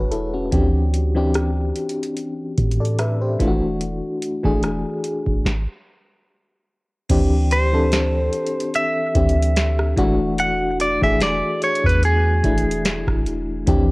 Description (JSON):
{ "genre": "contemporary R&B", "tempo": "73 BPM", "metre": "4/4", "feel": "swing 54% on 16ths", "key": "unclear", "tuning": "A4 = 440 Hz", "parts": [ { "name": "FM electric piano with tremolo", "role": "accompaniment", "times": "0.0-13.9 s", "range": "E3 to E5", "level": "-22 LUFS", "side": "left 1 dB", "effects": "cassette tape" }, { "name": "soft 808-style bass", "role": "bass", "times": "0.0-13.9 s", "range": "E1 to A2", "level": "-21 LUFS", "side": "equal", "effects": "none" }, { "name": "booming analog drum machine", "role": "drums", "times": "0.1-13.9 s", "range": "crash cymbal, hi-hat, kick drum, rim click, snare drum", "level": "-22 LUFS", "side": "equal", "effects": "cassette tape" }, { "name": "direct-recorded clean electric guitar", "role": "melody", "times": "7.5-13.2 s", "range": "G#4 to F#5", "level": "-21 LUFS", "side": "equal", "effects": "warbly pitch drift, cassette tape, analog delay" } ], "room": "light reverb", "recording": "home recording on cassette", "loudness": "-17 LUFS", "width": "side -23 dB against mid", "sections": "0.0-7.1 A section; 7.1-13.9 B section", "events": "stop 5.5-7.1", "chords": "0.0 E9sus4; 0.5 D9sus4; 3.4 E9sus4; 7.1 D9sus4; 10.0 E9sus4" }